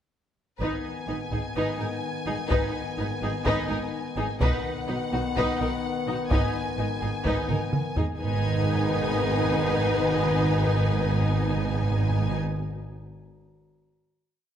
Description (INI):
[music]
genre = cinematic, epic orchestral film score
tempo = 126 BPM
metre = 4/4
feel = straight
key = G# minor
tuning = A4 = 440 Hz
[part]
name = rich symphonic violin section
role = melody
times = 0.6-12.4 s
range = F#5 to G#5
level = -34 LUFS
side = left 2 dB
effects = none
[part]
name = warm symphonic violin section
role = second line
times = 0.6-12.4 s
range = F#4 to B4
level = -33 LUFS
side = left 3 dB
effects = none
[part]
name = warm symphonic viola section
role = accompaniment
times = 0.6-12.4 s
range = D#4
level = -32 LUFS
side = right 2 dB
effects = none
[part]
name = mellow French horn section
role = sustained chords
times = 0.6-12.4 s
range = D#3 to B3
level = -31 LUFS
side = left 3 dB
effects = none
[part]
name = rich symphonic cello section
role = bass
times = 0.6-12.4 s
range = G#2 to B2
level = -31 LUFS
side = right 2 dB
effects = none
[part]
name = rich symphonic double bass section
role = bass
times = 0.6-12.4 s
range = G#1 to B1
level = -32 LUFS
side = right 2 dB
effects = none
[part]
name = taiko ensemble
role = drums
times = 0.6-8.2 s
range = none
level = -29 LUFS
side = equal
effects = none
[part]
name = timpani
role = percussion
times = 6.3-12.4 s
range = G#2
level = -31 LUFS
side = left 1 dB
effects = none
[sound]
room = wet scoring stage reverb, RT60 1.7 s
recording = none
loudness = -24 LUFS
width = side -9 dB against mid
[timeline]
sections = 0.6-8.2 theme; 8.2-12.0 final chord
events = drum fill 7.5-8.2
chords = 0.6 G#m; 4.4 B; 6.3 G#m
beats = | 0.61 1.09 1.56 2.04 | 2.51 2.99 3.46 3.94 | 4.41 4.88 5.36 5.83 | 6.31 6.78 7.25 7.73 | 8.20 8.68 9.15 9.63 | 10.10 10.58 11.05 11.53